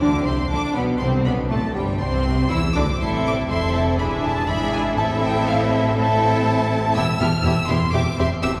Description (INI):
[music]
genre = quick classical-period movement for symphony orchestra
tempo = 121 BPM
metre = 4/4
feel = straight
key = C major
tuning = A4 = 438 Hz
[part]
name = warm studio violin section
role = melody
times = 0.0-8.5 s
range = E5 to F6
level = -28 LUFS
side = equal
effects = none
[part]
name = rich studio violin section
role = second line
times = 0.0-8.5 s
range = G3 to E5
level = -27 LUFS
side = equal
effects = none
[part]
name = rich studio viola section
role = accompaniment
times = 0.0-8.5 s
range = G3 to G4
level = -27 LUFS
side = equal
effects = none
[part]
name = clear studio double bass section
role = bass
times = 0.0-8.5 s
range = E1 to E2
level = -27 LUFS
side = equal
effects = none
[part]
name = rich studio cello section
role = bass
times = 0.0-8.5 s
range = E2 to E3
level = -27 LUFS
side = equal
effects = none
[part]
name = timpani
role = percussion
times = 1.0-1.7 s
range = none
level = barely audible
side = none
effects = none
[sound]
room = wet cathedral reverb, RT60 6.4 s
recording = recorded in a church or concert hall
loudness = -20 LUFS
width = mono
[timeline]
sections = 0.0-8.6 A section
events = none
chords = 0.0 Bm; 1.0 C; 3.0 Am; 4.0 E7; 5.0 Am; 7.0 Em; 7.9 C